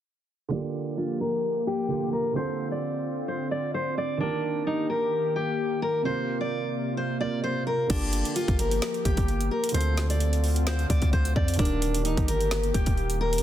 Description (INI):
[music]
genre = hip hop, trap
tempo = 130 BPM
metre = 4/4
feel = half-time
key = G minor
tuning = A4 = 440 Hz
[part]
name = fingerpicked steel-string acoustic guitar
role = melody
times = 0.5-13.4 s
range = D4 to D5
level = -29 LUFS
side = left 1 dB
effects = low-pass filter, ping-pong delay
[part]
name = dark grand piano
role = accompaniment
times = 0.5-13.4 s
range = C3 to Bb4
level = -33 LUFS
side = right 6 dB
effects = low-pass filter
[part]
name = warbly tape-like pad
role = sustained chords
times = 1.0-13.4 s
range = C3 to G4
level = -32 LUFS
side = left 2 dB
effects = chorus, built-in reverb, low-pass filter
[part]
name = long sustained 808-style bass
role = bass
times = 7.9-13.4 s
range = D1 to F2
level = -26 LUFS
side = equal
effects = none
[part]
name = trap drum kit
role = drums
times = 7.9-13.4 s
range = crash cymbal, hi-hat, kick drum, snare drum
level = -27 LUFS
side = equal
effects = none
[sound]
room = digital ambience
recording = dense, heavily limited modern master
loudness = -24 LUFS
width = side -11 dB against mid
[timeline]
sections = 0.5-7.9 A section; 7.9-13.4 B section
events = filter sweep 0.5-7.9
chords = 0.5 Gm7; 2.4 Dm7; 4.2 Eb; 6.1 Fsus4; 7.9 Gm7; 9.7 Dm7; 11.6 Eb